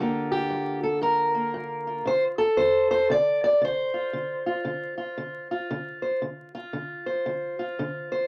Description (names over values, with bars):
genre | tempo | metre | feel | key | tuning
acoustic country blues, solo or duo | 116 BPM | 4/4 | swing 62% on 8ths | D minor | A4 = 440 Hz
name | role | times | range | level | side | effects
fingerpicked steel-string acoustic guitar | solo | 0.0-8.3 s | G2 to D5 | -26 LUFS | equal | none
room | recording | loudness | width
moderate small room reverb, RT60 0.5 s | vinyl crackle | -26 LUFS | mono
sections
0.0-8.3 A section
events
none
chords
0.0 Gm7; 2.1 Dm7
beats
0.51 1.03 1.55 | 2.07 2.59 3.11 3.62 | 4.14 4.66 5.18 5.70 | 6.22 6.74 7.26 7.78